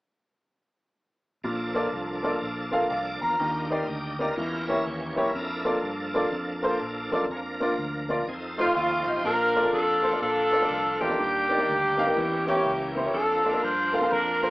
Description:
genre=uptempo gospel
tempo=123 BPM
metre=4/4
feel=swing 64% on 8ths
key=Bb major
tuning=A4 = 440 Hz
part: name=warm upright piano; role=accompaniment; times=1.4-14.5 s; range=Bb2 to Bb5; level=-27 LUFS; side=equal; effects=none
part: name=bright tonewheel organ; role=sustained chords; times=1.4-14.5 s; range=E3 to E5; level=-33 LUFS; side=right 1 dB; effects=slow rotary speaker, overdrive, chorus vibrato
part: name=fingered electric bass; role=bass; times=1.4-14.5 s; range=Bb1 to G2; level=-38 LUFS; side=equal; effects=none
part: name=clear saxophone section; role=melody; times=8.6-14.5 s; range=A3 to C5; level=-28 LUFS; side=left 1 dB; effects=none
part: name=dark trumpet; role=melody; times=8.6-14.5 s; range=F4 to C5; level=-25 LUFS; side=equal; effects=none
room=moderate studio reverb, RT60 0.7 s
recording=band playing live in one room, small speaker sound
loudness=-23 LUFS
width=side -20 dB against mid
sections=1.4-9.2 A section; 9.2-14.5 B section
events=none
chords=1.4 Bbmaj7; 3.4 Ebmaj7; 4.4 Edim7; 5.3 Bbmaj7/F; 7.3 Bb/F; 8.3 F7; 9.2 Bbmaj7; 11.2 Ebmaj7; 12.2 Edim7; 13.1 Bbmaj7/F

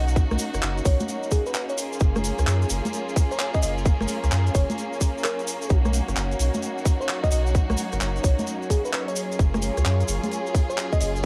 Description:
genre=UK garage, two-step garage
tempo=130 BPM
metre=4/4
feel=swing 65% on 16ths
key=B lydian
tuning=A4 = 440 Hz
part: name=bell-like FM electric piano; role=melody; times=0.0-11.1 s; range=G#4 to D#5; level=-32 LUFS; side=equal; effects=chorus, cassette tape
part: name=warm studio violin section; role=sustained chords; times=0.0-11.3 s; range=A#3 to G#4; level=-33 LUFS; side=equal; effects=sidechain pumping, cassette tape
part: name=soft dub sub bass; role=bass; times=0.0-11.3 s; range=F#1 to F#2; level=-26 LUFS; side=equal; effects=none
part: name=deep dark ambient pad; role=texture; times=0.8-11.3 s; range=F#3 to A#5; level=-38 LUFS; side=equal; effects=chorus, built-in reverb, sidechain pumping, cassette tape
part: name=cabasa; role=percussion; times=0.1-11.3 s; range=none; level=-38 LUFS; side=equal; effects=none
part: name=electronic kick drum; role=drums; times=0.2-11.0 s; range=none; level=-23 LUFS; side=equal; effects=studio ambience, cassette tape
part: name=garage drum kit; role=drums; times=0.2-11.1 s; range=congas, handclaps, hi-hat, rim click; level=-32 LUFS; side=equal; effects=studio ambience, cassette tape
room=digital ambience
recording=home recording on cassette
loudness=-24 LUFS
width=mono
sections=0.0-11.3 A section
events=none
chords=0.0 Bmaj9; 1.8 F#maj9; 5.7 Bmaj9; 9.2 F#maj9

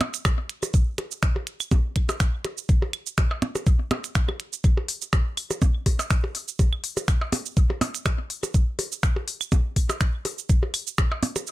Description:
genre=techno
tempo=123 BPM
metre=4/4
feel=swing 54% on 16ths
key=none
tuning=none
part: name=minimal click drum kit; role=drums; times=0.0-11.5 s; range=finger snaps, hi-hat, shaker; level=-29 LUFS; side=right 1 dB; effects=studio reverb
part: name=percussion blips and claves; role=percussion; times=0.0-11.4 s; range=none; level=-28 LUFS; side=right 1 dB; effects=studio reverb, ping-pong delay
part: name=electronic kick drum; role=drums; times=0.3-11.1 s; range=none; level=-21 LUFS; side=equal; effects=studio reverb
room=little or no reverb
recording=none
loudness=-22 LUFS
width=side -17 dB against mid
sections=0.0-11.5 A section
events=none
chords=none

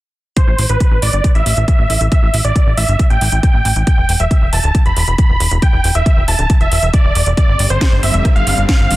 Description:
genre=uplifting trance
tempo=137 BPM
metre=4/4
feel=straight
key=unclear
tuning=A4 = 441 Hz
part: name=supersaw chords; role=melody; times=0.4-9.0 s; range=B4 to B5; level=-18 LUFS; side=right 1 dB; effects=sidechain pumping, low-pass filter, tape echo
part: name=electronic kick drum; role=drums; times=0.4-8.8 s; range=none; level=-12 LUFS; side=equal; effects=none
part: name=house drum kit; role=drums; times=0.4-9.0 s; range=hi-hat, rim click, snare drum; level=-21 LUFS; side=right 1 dB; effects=sidechain pumping on hats
part: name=plucky analog bass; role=bass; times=0.5-9.0 s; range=D1 to A1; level=-15 LUFS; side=equal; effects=sidechain pumping
part: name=supersaw pad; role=sustained chords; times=7.4-9.0 s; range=D3 to C4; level=-23 LUFS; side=equal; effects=sidechain pumping
room=little or no reverb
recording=dense, heavily limited modern master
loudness=-11 LUFS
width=side -17 dB against mid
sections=0.4-9.0 A section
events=none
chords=0.4 Gsus2; 3.9 Dsus4 (rootless); 7.4 Gsus4

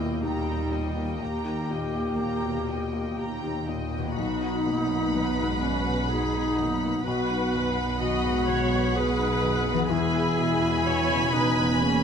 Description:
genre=cinematic, emotional film score for orchestra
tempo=62 BPM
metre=3/4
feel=rubato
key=unclear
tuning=A4 = 440 Hz
part: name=bright wooden-headed alto flute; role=melody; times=0.0-12.0 s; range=C#4 to G#4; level=-29 LUFS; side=left 1 dB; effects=none
part: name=warm studio violin section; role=second line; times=0.0-12.0 s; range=D#5 to B5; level=-31 LUFS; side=equal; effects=none
part: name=felt-muted upright piano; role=accompaniment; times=0.0-12.0 s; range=B1 to G#4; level=-31 LUFS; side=left 4 dB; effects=none
part: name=warm studio viola section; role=accompaniment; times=0.0-12.0 s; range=G3 to D#5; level=-31 LUFS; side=right 2 dB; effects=none
part: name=concert harp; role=arpeggios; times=0.0-12.0 s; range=B2 to G#4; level=-35 LUFS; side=left 12 dB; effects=none
part: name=rich studio double bass section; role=bass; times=0.0-12.0 s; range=E1 to D#2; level=-33 LUFS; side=right 3 dB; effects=none
part: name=warm studio cello section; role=bass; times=0.0-12.0 s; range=D#2 to B2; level=-32 LUFS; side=right 3 dB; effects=none
room=light reverb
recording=close, detailed microphones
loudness=-23 LUFS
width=side -7 dB against mid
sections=0.0-12.0 A section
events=none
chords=0.0 D#; 4.2 B; 9.9 E

